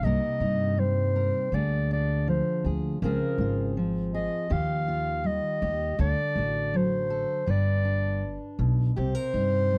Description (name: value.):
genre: acoustic folk-pop ballad.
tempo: 81 BPM.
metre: 4/4.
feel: straight.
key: C minor.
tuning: A4 = 439 Hz.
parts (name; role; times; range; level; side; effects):
mellow clarinet; melody; 0.0-9.8 s; Bb4 to F5; -32 LUFS; equal; none.
fingerpicked steel-string acoustic guitar; accompaniment; 0.0-9.8 s; G2 to B4; -31 LUFS; equal; none.
upright bass; bass; 0.0-9.8 s; G1 to G2; -31 LUFS; equal; none.
room: little or no reverb.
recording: dry, close 1970s-style studio recording.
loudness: -27 LUFS.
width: mono.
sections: 0.0-9.8 A section.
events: none.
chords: 0.0 Cm7; 1.5 Bb7/D; 3.0 Dbmaj7; 4.5 Ebadd9; 6.0 D7; 7.5 G; 9.0 Cm7.